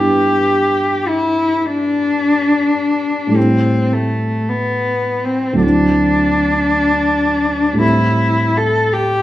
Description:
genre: classical, impressionist duo for cello and grand piano.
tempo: 53 BPM.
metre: 4/4.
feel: rubato.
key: G major.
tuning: A4 = 440 Hz.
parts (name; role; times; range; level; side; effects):
rich cello; melody; 0.0-9.2 s; A3 to A4; -15 LUFS; left 1 dB; none.
dark concert grand piano; accompaniment; 0.0-9.2 s; D2 to G4; -18 LUFS; right 1 dB; none.
room: wet recital hall reverb, RT60 1.3 s.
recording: none.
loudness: -13 LUFS.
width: side -14 dB against mid.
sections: 0.0-9.2 A section.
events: none.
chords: 0.0 G6; 3.4 A5; 5.6 D9; 7.8 Am7.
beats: 1.07 2.23 | 3.37 4.50 5.63 6.73 | 7.83 8.94.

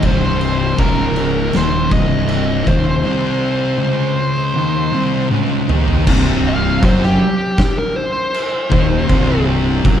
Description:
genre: stoner and doom metal.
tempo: 80 BPM.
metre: 4/4.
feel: straight.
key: C minor.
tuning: A4 = 440 Hz.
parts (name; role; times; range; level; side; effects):
fuzz lead guitar; melody; 0.0-9.4 s; G4 to F5; -21 LUFS; left 1 dB; wah, distortion, digital delay.
thick fuzz guitar; riff; 0.0-10.0 s; C2 to F#3; -19 LUFS; left 6 dB; distortion.
thick fuzz guitar; riff; 0.0-10.0 s; C2 to F#3; -20 LUFS; right 7 dB; distortion.
fuzz fingered electric bass; bass; 0.0-10.0 s; C1 to F#1; -20 LUFS; equal; overdrive.
oversized low-tuned drum kit; drums; 0.0-10.0 s; crash cymbal, kick drum, snare drum, toms; -18 LUFS; equal; none.
room: wet concert hall reverb, RT60 2.5 s.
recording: dark, warm production.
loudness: -13 LUFS.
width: side -9 dB against mid.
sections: 0.0-6.1 A section; 6.1-10.0 B section.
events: drum fill 5.3-6.1; lead electric guitar solo 6.1-10.0.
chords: 0.0 Cm.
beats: | 0.03 0.79 1.54 2.30 | 3.05 3.81 4.56 5.32 | 6.07 6.83 7.58 8.34 | 9.09 9.85.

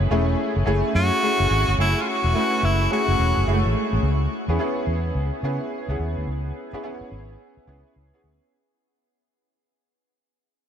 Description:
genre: R&B, new jack swing.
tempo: 107 BPM.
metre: 4/4.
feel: swing 62% on 16ths.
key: unclear.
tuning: A4 = 440 Hz.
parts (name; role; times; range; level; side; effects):
clear grand piano; accompaniment; 0.0-8.5 s; G#3 to B4; -25 LUFS; equal; analog chorus.
vintage muted fingered electric bass; bass; 0.0-8.4 s; E1 to C#3; -22 LUFS; equal; none.
edgy tenor saxophone; melody; 1.0-3.7 s; E4 to F#4; -24 LUFS; equal; analog delay.
room: moderate huge ambient reverb, RT60 7.9 s.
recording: dreamy mix soaked in reverb.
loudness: -20 LUFS.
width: side -8 dB against mid.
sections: 0.0-4.0 A section; 4.0-8.5 B section.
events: fade-out 4.0-8.5.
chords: 0.0 F#m7; 4.0 C#m7.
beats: 0.10 0.67 1.23 | 1.79 2.35 2.91 3.47 | 4.03 4.59 5.15 5.71 | 6.27 6.83 7.39 7.95.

